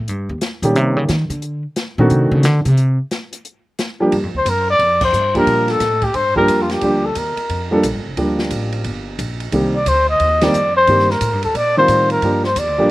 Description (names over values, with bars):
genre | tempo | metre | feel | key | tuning
jazz, small-group swing and bop | 178 BPM | 4/4 | swing 64% on 8ths | G minor | A4 = 442 Hz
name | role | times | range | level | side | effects
upright bass | bass | 0.0-12.9 s | F1 to Eb3 | -20 LUFS | equal | none
open jazz drum kit | drums | 0.1-12.7 s | crash cymbal, hi-hat, kick drum, ride cymbal, snare drum | -26 LUFS | equal | none
dark baby grand piano | accompaniment | 0.6-12.9 s | Eb3 to Bb4 | -17 LUFS | right 1 dB | none
breathy trumpet | melody | 4.4-7.7, 9.8-12.9 s | F4 to Eb5 | -15 LUFS | left 1 dB | slapback echo
room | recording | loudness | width
little or no reverb | recorded outdoors, with no room sound | -14 LUFS | side -18 dB against mid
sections
0.0-4.1 A section; 4.1-12.9 B section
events
upright bass solo 0.0-4.1; band accent 5.0, 10.4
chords
0.0 Eb7; 1.4 D7b9; 2.8 Gm7; 9.5 Cm7; 12.2 Gm7